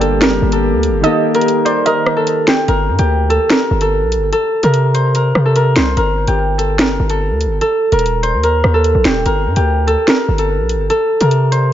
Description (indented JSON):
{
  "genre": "hip hop, drill",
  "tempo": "146 BPM",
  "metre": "4/4",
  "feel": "half-time",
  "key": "G minor",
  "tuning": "A4 = 445 Hz",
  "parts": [
    { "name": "concert harp", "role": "melody", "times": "0.0-11.7 s", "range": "G4 to C5", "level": "-15 LUFS", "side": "equal", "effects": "low-pass filter, ping-pong delay" },
    { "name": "warbly dusty pluck", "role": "second line", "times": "0.0-2.7 s", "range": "D5 to G5", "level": "-21 LUFS", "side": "right 5 dB", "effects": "chorus, ping-pong delay" },
    { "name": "warm concert grand piano", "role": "accompaniment", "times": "0.0-2.7 s", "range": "Eb3 to G4", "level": "-21 LUFS", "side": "left 2 dB", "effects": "low-pass filter" },
    { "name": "warbly tape-like pad", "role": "sustained chords", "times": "0.0-2.7 s", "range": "Eb3 to G4", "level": "-21 LUFS", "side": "left 1 dB", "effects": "chorus, built-in reverb" },
    { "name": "distorted 808-style bass", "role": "bass", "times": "0.0-11.7 s", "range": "Eb1 to C3", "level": "-15 LUFS", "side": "equal", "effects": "distortion" },
    { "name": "drill drum kit", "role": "drums", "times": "0.0-11.6 s", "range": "hi-hat, rim click, snare drum", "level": "-18 LUFS", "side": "right 1 dB", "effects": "none" }
  ],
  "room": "light reverb",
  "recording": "nothing above 7.5 kHz",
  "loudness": "-12 LUFS",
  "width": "side -11 dB against mid",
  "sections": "0.0-2.7 A section; 2.7-11.7 B section",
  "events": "kick muted 1.0-2.7",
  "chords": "0.0 Gmadd9; 1.0 Eb; 2.7 Gmadd9; 4.3 Am/C; 6.0 Gsus2; 7.6 Eb5; 9.3 Gmadd9; 10.9 Am"
}